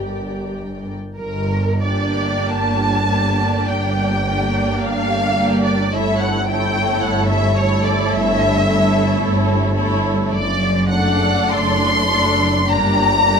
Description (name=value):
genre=classical, slow romantic movement for string orchestra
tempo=43-56 BPM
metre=4/4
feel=rubato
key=G minor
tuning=A4 = 439 Hz
part: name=rich symphonic violin section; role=melody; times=0.0-13.4 s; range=Bb4 to C6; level=-20 LUFS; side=left 2 dB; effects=none
part: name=warm symphonic violin section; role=second line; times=0.0-13.4 s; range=G4 to D5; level=-24 LUFS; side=right 1 dB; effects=none
part: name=warm symphonic viola section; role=accompaniment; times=0.0-13.4 s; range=A3 to G4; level=-23 LUFS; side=right 1 dB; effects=none
part: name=rich symphonic double bass section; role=bass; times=0.0-13.4 s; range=F#1 to G1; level=-23 LUFS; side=equal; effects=none
part: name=warm symphonic cello section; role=bass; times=0.0-13.4 s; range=F#2 to G2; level=-22 LUFS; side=right 1 dB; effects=none
room=light reverb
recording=minimal, uncompressed stereo recording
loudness=-15 LUFS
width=side -6 dB against mid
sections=0.0-1.2 A section; 1.2-13.4 A section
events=none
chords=0.0 Gm; 5.9 A7/G; 10.3 D7/F#; 12.7 Gm